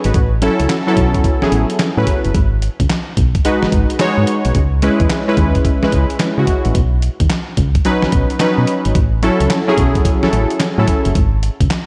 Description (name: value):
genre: R&B, new jack swing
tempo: 109 BPM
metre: 4/4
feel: swing 64% on 16ths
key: unclear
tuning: A4 = 438 Hz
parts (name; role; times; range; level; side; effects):
- warm analog keys; accompaniment; 0.0-11.2 s; F#3 to D#5; -18 LUFS; equal; chorus
- dusty soul sampler-style drum kit; drums; 0.0-11.9 s; handclaps, hi-hat, kick drum, snare drum; -20 LUFS; equal; none
- solid FM bass; bass; 0.1-11.7 s; F#1 to C#3; -18 LUFS; equal; none
room: light reverb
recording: dark, warm production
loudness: -15 LUFS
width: mono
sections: 0.0-11.9 A section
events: none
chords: 0.1 A6; 2.3 G#m7; 4.5 C#m7; 6.8 Badd9; 9.0 A6; 11.2 N.C.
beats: | 0.14 0.69 1.25 1.79 | 2.35 2.90 3.45 4.00 | 4.55 5.10 5.65 6.20 | 6.75 7.30 7.85 8.40 | 8.95 9.50 10.05 10.60 | 11.15 11.70